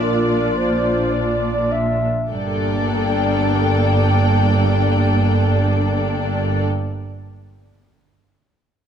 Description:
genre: cinematic, emotional film score for orchestra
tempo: 51 BPM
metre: 3/4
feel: rubato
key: G minor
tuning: A4 = 439 Hz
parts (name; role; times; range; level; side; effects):
- muted studio violin section; melody; 0.0-6.6 s; D5 to G5; -27 LUFS; left 6 dB; none
- mellow clarinet; second line; 0.0-2.3 s; Bb4 to E5; -23 LUFS; left 2 dB; none
- muted studio violin section; second line; 0.0-6.6 s; A4 to D5; -25 LUFS; left 1 dB; none
- muted symphonic viola section; accompaniment; 0.0-6.6 s; Bb3 to F4; -23 LUFS; left 1 dB; none
- muted studio cello section; bass; 0.0-6.6 s; G2 to Bb2; -24 LUFS; right 2 dB; none
- muted studio double bass section; bass; 0.0-6.6 s; G1 to Bb1; -20 LUFS; right 2 dB; none
room: light reverb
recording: close, detailed microphones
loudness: -16 LUFS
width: side -8 dB against mid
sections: 0.0-2.3 A section; 2.3-5.9 B section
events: slowing down 0.0-2.3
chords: 0.0 Bb; 2.3 Gmadd9

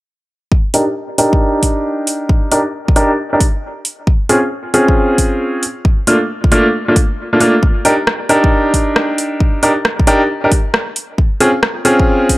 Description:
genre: UK garage, two-step garage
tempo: 135 BPM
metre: 4/4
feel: swing 66% on 16ths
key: unclear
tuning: A4 = 440 Hz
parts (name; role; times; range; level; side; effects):
- electronic kick drum; drums; 0.5-12.4 s; none; -13 LUFS; equal; none
- bright baby grand piano; stabs; 0.7-12.4 s; A3 to Bb4; -13 LUFS; equal; low-pass filter, analog delay
- house drum kit; drums; 0.7-12.4 s; hi-hat, rim click; -16 LUFS; equal; none
room: light reverb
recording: dry, gritty hardware recording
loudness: -11 LUFS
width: side -19 dB against mid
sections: 0.5-12.4 A section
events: filter sweep on grand piano 0.5-12.4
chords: 0.5 Ebmaj7/D; 4.1 Dbmaj7/C; 5.6 Bbmaj7/A; 7.6 Ebmaj7/D; 11.2 Dbmaj7/C

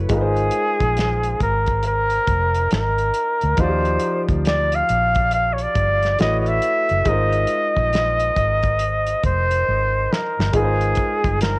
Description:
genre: R&B, neo-soul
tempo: 69 BPM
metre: 4/4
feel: swing 64% on 16ths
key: unclear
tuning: A4 = 440 Hz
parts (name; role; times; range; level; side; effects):
- warm grand piano; accompaniment; 0.0-11.6 s; F3 to D5; -26 LUFS; left 1 dB; cassette tape, plate reverb
- vintage muted fingered electric bass; bass; 0.0-11.6 s; F1 to Eb2; -22 LUFS; equal; none
- clear flugelhorn; melody; 0.1-11.6 s; Ab4 to F5; -19 LUFS; equal; cassette tape, plate reverb
- cloth-damped thuddy drum kit; drums; 0.1-11.6 s; hi-hat, kick drum, snare drum; -23 LUFS; equal; cassette tape
room: light reverb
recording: home recording on cassette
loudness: -16 LUFS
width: side -25 dB against mid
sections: 0.0-10.5 A section; 10.5-11.6 B section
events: drum fill 9.7-10.5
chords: 0.1 Ab69; 3.6 Ebmaj9; 6.2 A69; 7.1 Ab69

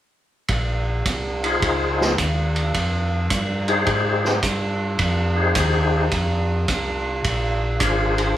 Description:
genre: soul jazz organ trio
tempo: 107 BPM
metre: 4/4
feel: swing 68% on 8ths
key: unclear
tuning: A4 = 440 Hz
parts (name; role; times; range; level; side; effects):
- mellow tonewheel organ; bass; 0.5-8.3 s; Ab1 to Ab2; -23 LUFS; equal; overdrive, chorus vibrato, slow rotary speaker
- vintage drum kit; drums; 0.5-8.3 s; hi-hat, kick drum, ride cymbal, snare drum; -22 LUFS; right 2 dB; none
- percussive tonewheel organ; melody; 1.4-8.4 s; D4 to C5; -22 LUFS; left 3 dB; slow rotary speaker, overdrive, chorus vibrato
room: moderate large studio reverb, RT60 1.2 s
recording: band playing live in one room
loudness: -19 LUFS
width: side -12 dB against mid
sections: 0.5-8.4 A section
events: none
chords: 0.5 Bb7sus4; 2.7 Fm9; 7.2 Bb7

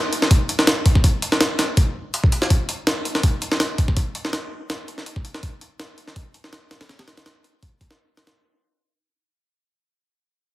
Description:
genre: drum and bass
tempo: 164 BPM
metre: 4/4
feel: swing 53% on 16ths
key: none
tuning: none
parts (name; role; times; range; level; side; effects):
- jungle sampler-style drum kit; drums; 0.1-8.4 s; hi-hat, kick drum, snare drum; -18 LUFS; equal; none
room: little or no reverb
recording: heavily compressed radio sound, multiband compression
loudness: -18 LUFS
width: side -17 dB against mid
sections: 0.0-8.4 A section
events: fade-out 0.0-8.4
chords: none

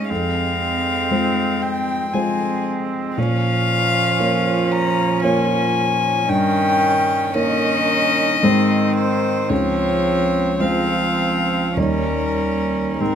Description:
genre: classical, slow romantic movement for piano quartet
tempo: 47-60 BPM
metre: 3/4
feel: rubato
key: unclear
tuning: A4 = 439 Hz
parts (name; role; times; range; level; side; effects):
- warm violin; melody; 0.0-13.2 s; Bb4 to Bb5; -21 LUFS; left 5 dB; none
- rich cello; second line; 0.0-13.2 s; Eb3 to Ab3; -24 LUFS; right 5 dB; none
- dark baby grand piano; accompaniment; 0.0-13.2 s; Db2 to Db5; -21 LUFS; left 1 dB; none
- warm viola; accompaniment; 0.0-13.2 s; C4 to Db4; -24 LUFS; right 3 dB; none
room: moderate studio reverb, RT60 0.5 s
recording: none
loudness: -16 LUFS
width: side -8 dB against mid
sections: 0.0-13.2 A section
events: none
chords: 0.1 Fm; 3.2 Bbm; 6.3 Eb7/G; 8.4 Ab; 9.5 Dbmaj7; 11.8 Eb7

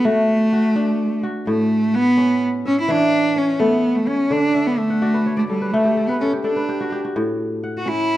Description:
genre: west african traditional, West African string and xylophone music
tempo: 84 BPM (dotted quarters)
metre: 12/8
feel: straight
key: unclear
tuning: A4 = 440 Hz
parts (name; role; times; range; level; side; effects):
- rich cello; melody; 0.0-8.2 s; G3 to F#4; -18 LUFS; right 1 dB; none
- kora; arpeggios; 0.0-8.2 s; A2 to F#5; -22 LUFS; left 1 dB; none
room: moderate recital hall reverb, RT60 1.4 s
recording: dark, warm production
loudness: -16 LUFS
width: side -14 dB against mid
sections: 0.0-8.2 A section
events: kora fill 4.5-7.1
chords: 0.0 D; 1.5 A; 4.3 D; 7.1 A

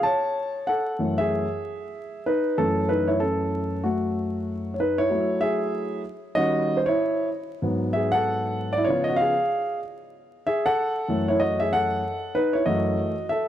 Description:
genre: hip hop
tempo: 95 BPM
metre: 4/4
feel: swing 61% on 16ths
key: F# dorian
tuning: A4 = 440 Hz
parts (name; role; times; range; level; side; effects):
- dark grand piano; solo; 0.0-13.5 s; F#2 to A5; -22 LUFS; equal; none
room: light reverb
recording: vinyl crackle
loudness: -22 LUFS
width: side -11 dB against mid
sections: 0.0-5.1 A section; 5.1-13.5 B section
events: grand piano solo 0.0-5.1, 5.1-13.5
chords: 0.0 F#m7; 6.4 D#7b9; 7.6 F#m11/G#; 8.9 C#7; 10.1 F#m7

